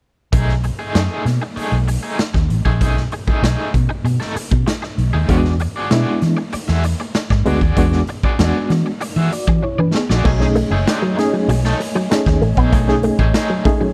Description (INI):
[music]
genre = funk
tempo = 97 BPM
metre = 4/4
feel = straight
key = B mixolydian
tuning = A4 = 440 Hz
[part]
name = overdriven electric guitar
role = accompaniment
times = 0.3-13.9 s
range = A3 to E5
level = -27 LUFS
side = equal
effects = tremolo
[part]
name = vintage muted fingered electric bass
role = bass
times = 0.3-13.3 s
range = F#1 to E3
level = -20 LUFS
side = equal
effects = none
[part]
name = raw garage drum kit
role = drums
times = 0.3-13.8 s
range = crash cymbal, hi-hat, kick drum, snare drum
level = -22 LUFS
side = equal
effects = none
[part]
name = barky reed electric piano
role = stabs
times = 5.3-13.9 s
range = G#3 to D5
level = -22 LUFS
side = equal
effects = overdrive, fast tremolo
[part]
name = electric guitar with an envelope filter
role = riff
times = 10.2-13.9 s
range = F#3 to B3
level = -23 LUFS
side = equal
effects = analog chorus
[part]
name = mellow tonewheel organ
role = sustained chords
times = 10.3-13.9 s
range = A3 to G#5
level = -29 LUFS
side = equal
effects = fast rotary speaker
[sound]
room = small room ambience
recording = none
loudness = -17 LUFS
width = mono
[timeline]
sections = 0.3-10.3 A section; 10.3-13.9 B section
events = drum fill 9.6-10.3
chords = 0.3 B6; 5.3 E9; 10.3 B13